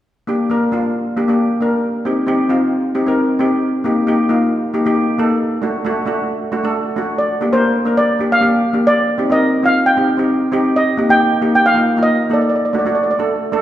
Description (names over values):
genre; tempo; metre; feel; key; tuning
calypso; 135 BPM; 4/4; straight; G minor; A4 = 442 Hz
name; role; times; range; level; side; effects
steel pan; accompaniment; 0.3-13.6 s; A3 to Bb4; -15 LUFS; equal; none
steel pan; melody; 7.2-13.2 s; C5 to G5; -15 LUFS; right 1 dB; none
room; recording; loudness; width
wet recital hall reverb, RT60 1.8 s; recorded in a church or concert hall; -13 LUFS; side -12 dB against mid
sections
0.1-7.2 A section; 7.2-13.6 B section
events
none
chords
0.1 Gm7; 1.8 Cm; 3.6 Eb; 5.4 D; 7.2 Gm7; 9.0 Cm; 10.7 Eb; 12.5 D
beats
| 0.06 0.50 0.95 1.39 | 1.84 2.28 2.73 3.18 | 3.62 4.07 4.51 4.96 | 5.40 5.85 6.29 6.74 | 7.18 7.63 8.07 8.52 | 8.97 9.41 9.86 10.30 | 10.75 11.19 11.64 12.08 | 12.53 12.97 13.41